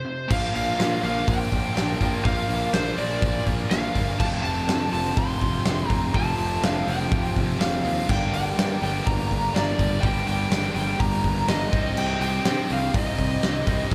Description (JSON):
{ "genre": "hard rock", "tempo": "123 BPM", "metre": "4/4", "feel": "straight", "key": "unclear", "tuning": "A4 = 440 Hz", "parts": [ { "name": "lead guitar through a small cranked amp", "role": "melody", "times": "0.0-13.9 s", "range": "C5 to C6", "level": "-30 LUFS", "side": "equal", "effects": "overdrive, slapback echo" }, { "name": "overdriven electric guitar", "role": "riff", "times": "0.0-13.9 s", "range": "F2 to C4", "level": "-33 LUFS", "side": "equal", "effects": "slapback echo" }, { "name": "overdriven tonewheel organ", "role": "sustained chords", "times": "0.3-13.9 s", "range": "F3 to Eb5", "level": "-43 LUFS", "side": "equal", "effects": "none" }, { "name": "tight distorted guitar", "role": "riff", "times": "0.3-13.9 s", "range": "F2 to Eb4", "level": "-35 LUFS", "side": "equal", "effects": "distortion, slapback echo" }, { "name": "modern bright picked electric bass", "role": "bass", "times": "0.3-13.9 s", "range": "F1 to C3", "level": "-31 LUFS", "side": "equal", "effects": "none" }, { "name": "huge arena drum kit", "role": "drums", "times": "0.3-13.9 s", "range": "crash cymbal, hi-hat, kick drum, snare drum", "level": "-28 LUFS", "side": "equal", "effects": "none" } ], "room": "moderate lush hall reverb, RT60 2.0 s", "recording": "big arena sound", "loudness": "-24 LUFS", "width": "mono", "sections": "0.3-13.9 A section", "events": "break 0.0-0.3", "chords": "0.3 Bb; 4.2 F; 8.1 Gm; 11.7 Cm" }